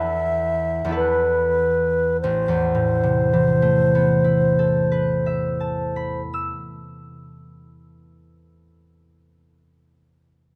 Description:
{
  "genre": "classical, impressionist duo for flute and harp",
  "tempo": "48 BPM",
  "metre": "4/4",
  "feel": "rubato",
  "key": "A minor",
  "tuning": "A4 = 440 Hz",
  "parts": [
    { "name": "baroque flute", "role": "melody", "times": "0.0-6.2 s", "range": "B4 to E5", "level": "-23 LUFS", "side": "equal", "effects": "none" },
    { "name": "concert harp", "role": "accompaniment", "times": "0.0-8.7 s", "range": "A1 to E6", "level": "-24 LUFS", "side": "equal", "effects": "none" }
  ],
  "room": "little or no reverb",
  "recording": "close, detailed microphones",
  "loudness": "-20 LUFS",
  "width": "mono",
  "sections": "0.0-2.2 A section; 2.2-7.3 B section",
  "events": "slowing down 0.0-2.2",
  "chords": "0.0 Esus4; 2.2 Amadd9"
}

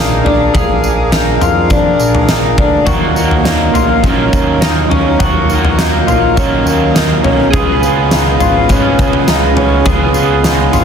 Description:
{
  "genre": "dream pop",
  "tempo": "103 BPM",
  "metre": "4/4",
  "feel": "straight",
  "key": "unclear",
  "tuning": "A4 = 440 Hz",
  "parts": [
    { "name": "pedal harmonium", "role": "sustained chords", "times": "0.0-10.8 s", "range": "F#3 to E#5", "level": "-17 LUFS", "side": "right 1 dB", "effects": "none" },
    { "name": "electric guitar through a small old amp", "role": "arpeggios", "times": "0.0-10.8 s", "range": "C#4 to G#4", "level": "-14 LUFS", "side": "left 2 dB", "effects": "analog chorus, digital delay" },
    { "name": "fat analog bass", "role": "bass", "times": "0.0-10.8 s", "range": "G#1 to E#2", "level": "-17 LUFS", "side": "equal", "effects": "none" },
    { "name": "glassy synth bell", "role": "texture", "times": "0.0-9.7 s", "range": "G#4 to G#5", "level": "-28 LUFS", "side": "left 1 dB", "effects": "none" },
    { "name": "huge arena drum kit", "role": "drums", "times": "0.3-10.8 s", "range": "kick drum, snare drum, tambourine, toms", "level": "-14 LUFS", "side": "equal", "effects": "none" },
    { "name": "raw garage guitar", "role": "accompaniment", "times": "2.9-10.8 s", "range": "C#3 to E#4", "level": "-17 LUFS", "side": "right 5 dB", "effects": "overdrive, harmonic tremolo, wide subtle chorus" }
  ],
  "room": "light reverb, small room ambience",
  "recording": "dense, heavily limited modern master",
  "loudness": "-9 LUFS",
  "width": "side -7 dB against mid",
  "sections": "0.0-10.8 A section",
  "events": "none",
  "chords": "0.0 A#7; 2.9 D#madd9; 7.5 C#7"
}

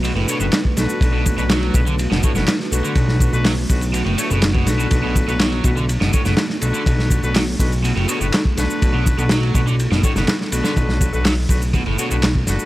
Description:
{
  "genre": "breakbeat, breaks",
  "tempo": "123 BPM",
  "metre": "4/4",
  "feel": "straight",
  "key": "B minor",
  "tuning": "A4 = 440 Hz",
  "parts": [
    { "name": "deep dark ambient pad", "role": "sustained chords", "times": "0.0-12.7 s", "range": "A3 to B4", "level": "-28 LUFS", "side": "right 2 dB", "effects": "chorus, built-in reverb, sidechain pumping" },
    { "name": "crunchy overdriven guitar", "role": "riff", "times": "0.0-12.2 s", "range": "A2 to A3", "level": "-25 LUFS", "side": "right 1 dB", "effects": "tube saturation, vintage 12-bit sampler grit, tape echo" },
    { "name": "fat analog bass", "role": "bass", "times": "0.0-12.6 s", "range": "F#1 to B1", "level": "-20 LUFS", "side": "equal", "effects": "none" },
    { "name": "crunchy breakbeat drum kit", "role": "drums", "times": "0.0-12.6 s", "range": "hi-hat, kick drum, ride cymbal, snare drum", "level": "-19 LUFS", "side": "equal", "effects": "none" },
    { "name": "electronic shaker and handclaps", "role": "drums", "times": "0.0-12.7 s", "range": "none", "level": "-28 LUFS", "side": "left 1 dB", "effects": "none" },
    { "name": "dark horn section", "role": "stabs", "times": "0.3-12.7 s", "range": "D4 to C#5", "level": "-26 LUFS", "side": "left 3 dB", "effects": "vintage 12-bit sampler grit, tape echo" }
  ],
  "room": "little or no reverb",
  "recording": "dry, gritty hardware recording",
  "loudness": "-15 LUFS",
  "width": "side -16 dB against mid",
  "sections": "0.0-12.7 A section",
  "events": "band accent 12.2",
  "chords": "0.0 Bm7"
}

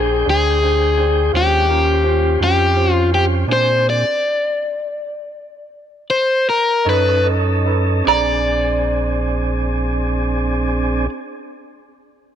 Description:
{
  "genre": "slow blues",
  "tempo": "49-56 BPM (dotted quarters)",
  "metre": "12/8",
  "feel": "straight",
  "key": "Bb mixolydian",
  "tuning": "A4 = 442 Hz",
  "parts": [
    { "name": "overdriven semi-hollow guitar", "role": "melody", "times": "0.0-11.1 s", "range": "G4 to D5", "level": "-17 LUFS", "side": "left 3 dB", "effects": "none" },
    { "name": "warm baby grand piano", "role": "accompaniment", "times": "0.0-11.1 s", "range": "Db4 to D#5", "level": "-26 LUFS", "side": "right 15 dB", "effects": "none" },
    { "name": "tonewheel organ", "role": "sustained chords", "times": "0.0-11.1 s", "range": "Ab3 to G5", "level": "-23 LUFS", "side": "right 2 dB", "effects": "slow rotary speaker" },
    { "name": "sub bass with octave", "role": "bass", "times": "0.0-11.1 s", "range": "Bb1 to Bb2", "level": "-19 LUFS", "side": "right 1 dB", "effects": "none" },
    { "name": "dark upright piano", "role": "second line", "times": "8.1-11.1 s", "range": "D5 to Bb5", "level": "-22 LUFS", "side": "right 13 dB", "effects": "none" }
  ],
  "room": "light reverb, studio reverb",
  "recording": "1960s-style stereo",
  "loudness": "-14 LUFS",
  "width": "side -9 dB against mid",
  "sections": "0.0-8.1 A section; 8.1-12.4 B section",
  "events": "slowing down 2.0-8.1; stop 3.5-6.9",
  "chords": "0.0 Bb13; 1.3 Eb13; 3.5 Bb9; 6.9 B9; 8.1 Bb9"
}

